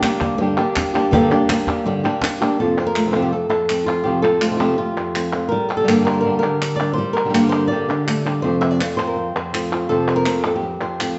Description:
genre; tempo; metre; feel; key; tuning
flamenco; 164 BPM; 4/4; straight; F major; A4 = 438 Hz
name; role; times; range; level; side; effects
flamenco guitar; melody; 0.0-11.2 s; F2 to E5; -22 LUFS; equal; none
flamenco guitar; stabs; 0.0-11.2 s; F2 to G4; -24 LUFS; equal; none
cajon; percussion; 0.0-2.4 s; none; -28 LUFS; equal; none
palmas hand claps; percussion; 0.0-11.2 s; none; -29 LUFS; equal; none
room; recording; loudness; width
wet large studio reverb, RT60 1.1 s; band playing live in one room, nothing above 7.9 kHz; -19 LUFS; mono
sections
0.0-2.6 A section; 2.6-11.2 B section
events
none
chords
0.0 Gm; 2.6 F; 5.5 Gm; 8.4 F

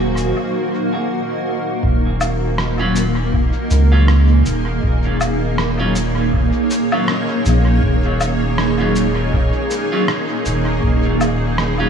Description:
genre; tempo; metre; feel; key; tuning
ambient dub; 80 BPM; 4/4; swing 58% on 16ths; Eb dorian; A4 = 440 Hz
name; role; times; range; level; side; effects
granular cloud pad; sustained chords; 0.0-11.9 s; Bb3 to Db5; -19 LUFS; right 1 dB; built-in reverb, wide subtle chorus
warm sub bass; bass; 0.0-11.9 s; Eb1 to Db2; -17 LUFS; equal; tube saturation
electronic cabasa, woodblock and rim click; drums; 0.2-11.8 s; none; -26 LUFS; left 1 dB; dub echo
electronic kick drum; drums; 1.8-11.0 s; none; -19 LUFS; equal; none
clean electric guitar; stabs; 2.8-11.9 s; Gb3 to F4; -26 LUFS; equal; dub echo
room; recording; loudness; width
moderate lush hall reverb, RT60 3.1 s; dreamy mix soaked in reverb, small room ambience; -15 LUFS; side -7 dB against mid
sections
0.0-1.8 A section; 1.8-11.9 B section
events
break 0.3-1.8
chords
0.0 Abadd9/Eb (rootless); 1.8 Ebm7

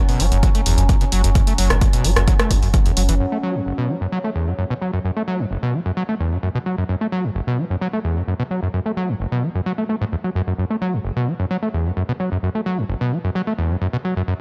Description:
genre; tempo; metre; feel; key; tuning
driving peak-time techno; 130 BPM; 4/4; straight; F# minor; A4 = 440 Hz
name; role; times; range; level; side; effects
overdriven acid bass; riff; 0.0-14.3 s; F#1 to A3; -23 LUFS; equal; distortion, analog chorus, sidechain pumping
overtone-sweeping drone; drone; 0.0-3.2 s; F#3 to C#4; -32 LUFS; equal; chorus, built-in reverb, sidechain pumping
punchy analog drum machine; drums; 0.1-3.2 s; hi-hat, rim click; -26 LUFS; equal; low-pass filter on hats, low-pass filter on snare, low-pass filter on room
saturated sub bass; bass; 0.2-3.2 s; F#1; -20 LUFS; equal; sidechain pumping, low-pass filter
electronic kick drum; drums; 0.4-2.8 s; none; -19 LUFS; equal; none
room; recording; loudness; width
light reverb, digital ambience; none; -20 LUFS; mono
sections
0.0-3.2 A section; 3.2-14.4 B section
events
none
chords
0.0 F#5; 3.2 N.C.

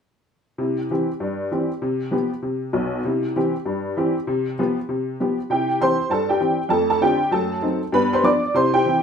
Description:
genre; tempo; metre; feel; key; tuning
jazz, stride piano; 196 BPM; 4/4; swing 60% on 8ths; C major; A4 = 440 Hz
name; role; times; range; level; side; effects
honky-tonk upright piano; solo; 0.6-9.0 s; B1 to D6; -19 LUFS; equal; none
room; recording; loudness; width
wet studio reverb, RT60 0.7 s; band playing live in one room; -19 LUFS; side -7 dB against mid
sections
0.6-5.5 A section; 5.5-9.0 B section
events
none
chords
0.6 C; 1.8 G7/C; 3.0 C; 4.3 G7/C; 5.5 C; 6.7 F6; 7.3 F#dim7; 7.9 G7

